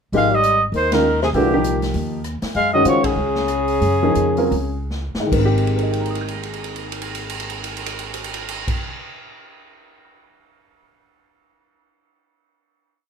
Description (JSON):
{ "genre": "modal jazz", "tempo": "139-199 BPM", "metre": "4/4", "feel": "swing 60% on 8ths", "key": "Ab major", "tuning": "A4 = 440 Hz", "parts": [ { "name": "breathy tenor saxophone", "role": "second line", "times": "0.1-4.9 s", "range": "Bb2 to Ab3", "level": "-21 LUFS", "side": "left 4 dB", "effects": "none" }, { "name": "warm upright piano", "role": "accompaniment", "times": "0.1-9.0 s", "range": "Ab2 to Bb6", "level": "-21 LUFS", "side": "equal", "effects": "none" }, { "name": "upright bass", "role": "bass", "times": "0.1-8.7 s", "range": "Ab1 to Db3", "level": "-25 LUFS", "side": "equal", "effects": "none" }, { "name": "swinging big-band drum kit", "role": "drums", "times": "0.1-10.2 s", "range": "crash cymbal, hi-hat, kick drum, ride cymbal, rim click, snare drum", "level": "-28 LUFS", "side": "right 1 dB", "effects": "none" }, { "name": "breathy trumpet", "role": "melody", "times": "0.2-4.9 s", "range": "G4 to F5", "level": "-20 LUFS", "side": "right 2 dB", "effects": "none" } ], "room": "moderate club reverb, RT60 0.5 s", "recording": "minimal, uncompressed stereo recording", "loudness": "-17 LUFS", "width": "side -6 dB against mid", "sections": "0.1-5.3 A section; 5.3-8.8 final chord", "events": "band accent 0.9, 3.0; slowing down 2.6-5.3; drum fill 4.9-5.3, 5.5-8.7", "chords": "0.1 Abmaj9; 2.6 Gbmaj9; 5.3 Abmaj9" }